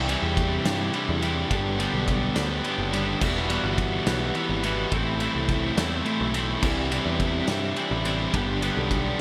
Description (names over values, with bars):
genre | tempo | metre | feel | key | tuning
indie rock | 70 BPM (dotted quarters) | 6/8 | straight | unclear | A4 = 440 Hz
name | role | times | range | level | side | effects
biting overdriven guitar | riff | 0.0-9.2 s | E2 to G4 | -29 LUFS | equal | none
twelve-string electric guitar | riff | 0.0-9.2 s | G2 to F#4 | -32 LUFS | equal | lush chorus
picked electric bass | bass | 0.0-9.1 s | E1 to G2 | -32 LUFS | equal | none
loose indie drum kit | drums | 0.1-9.0 s | crash cymbal, kick drum, ride cymbal, snare drum | -32 LUFS | equal | none
room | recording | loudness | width
moderate lush hall reverb, RT60 2.6 s | bright 1980s-style digital production | -25 LUFS | mono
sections
0.0-9.2 A section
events
none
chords
0.0 Cadd9; 1.5 G; 3.2 Emadd9; 4.9 Am; 6.6 Cadd9; 8.3 G